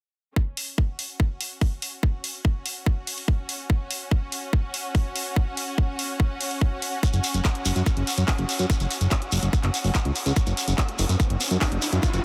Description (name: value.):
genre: psychedelic trance.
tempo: 144 BPM.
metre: 4/4.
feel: straight.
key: unclear.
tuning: A4 = 440 Hz.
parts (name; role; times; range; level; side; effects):
electronic kick drum; drums; 0.4-12.1 s; none; -24 LUFS; equal; none.
clear symphonic string section; texture; 0.4-12.2 s; C#4 to F#5; -36 LUFS; equal; sidechain pumping.
garage drum kit; drums; 0.6-12.2 s; handclaps, hi-hat; -32 LUFS; equal; none.
shekere; percussion; 7.0-12.2 s; none; -34 LUFS; equal; none.
fat analog bass; bass; 7.1-12.2 s; F#1 to F#2; -25 LUFS; equal; none.
riser; sound effects; 10.9-12.2 s; none; -34 LUFS; equal; none.
room: light reverb.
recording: none.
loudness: -25 LUFS.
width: mono.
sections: 0.4-12.2 A section.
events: fade-in on string section 0.4-12.2; riser 10.9-12.2.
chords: 0.4 F#5.